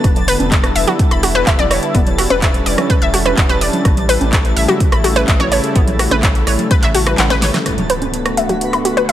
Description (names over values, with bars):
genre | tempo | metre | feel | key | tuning
progressive house | 126 BPM | 4/4 | straight | unclear | A4 = 442 Hz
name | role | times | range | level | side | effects
lush unison pad | sustained chords | 0.0-9.1 s | C#3 to F#4 | -20 LUFS | equal | chorus, sidechain pumping
round analog bass | bass | 0.0-7.5 s | E1 to A1 | -20 LUFS | equal | tube saturation, sidechain pumping
electronic kick drum | drums | 0.0-6.8 s | none | -15 LUFS | equal | none
pop drum kit | drums | 0.0-9.1 s | handclaps, hi-hat, rim click, snare drum | -20 LUFS | right 1 dB | none
electronic rim click and congas | percussion | 0.0-8.8 s | none | -23 LUFS | right 3 dB | sidechain pumping on snare, sidechain pumping on perc
twinkling granular texture | texture | 0.0-9.1 s | A4 to B5 | -28 LUFS | left 1 dB | built-in reverb, sidechain pumping
analog pluck | arpeggios | 0.3-9.1 s | B3 to B5 | -17 LUFS | left 1 dB | chorus, sidechain pumping, dub echo
impact | sound effects | 7.7-9.1 s | none | -25 LUFS | equal | none
room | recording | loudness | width
light reverb | none | -12 LUFS | side -12 dB against mid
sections
0.0-7.7 A section; 7.7-9.1 B section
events
kick drops out 7.2-7.7; drum fill 7.2-7.7; impact 7.7-9.1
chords
0.0 Em7; 3.9 A7; 7.7 Bm7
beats
| 0.04 0.52 0.99 1.47 | 1.95 2.42 2.90 3.38 | 3.85 4.33 4.80 5.28 | 5.76 6.23 6.71 7.18 | 7.66 8.14 8.61 9.09